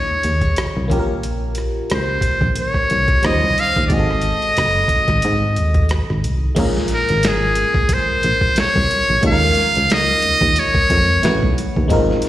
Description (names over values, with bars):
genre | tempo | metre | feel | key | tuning
R&B, neo-soul | 90 BPM | 4/4 | swing 57% on 16ths | unclear | A4 = 438 Hz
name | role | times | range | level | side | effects
trumpet with metal mute | melody | 0.0-11.6 s | Ab4 to F5 | -18 LUFS | equal | plate reverb, slapback echo, analog delay
FM electric piano | accompaniment | 0.0-12.3 s | G3 to Db5 | -23 LUFS | left 1 dB | chorus, phaser, plate reverb, slapback echo
solid FM bass | bass | 0.1-12.2 s | Gb1 to Ab2 | -20 LUFS | equal | none
boom bap sampler-style drum kit | drums | 0.2-12.3 s | crash cymbal, hi-hat, kick drum, rim click, snare drum | -20 LUFS | equal | none
room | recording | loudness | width
light reverb | live gig heard through the venue's PA, recital hall reverb | -14 LUFS | side -14 dB against mid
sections
0.0-6.6 A section; 6.6-12.3 B section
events
none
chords
0.0 Eb7sus4; 0.9 Bbm69; 3.2 Eb13; 3.9 Ab7b9; 6.6 Bbm9; 9.2 Eb9sus4; 11.2 A69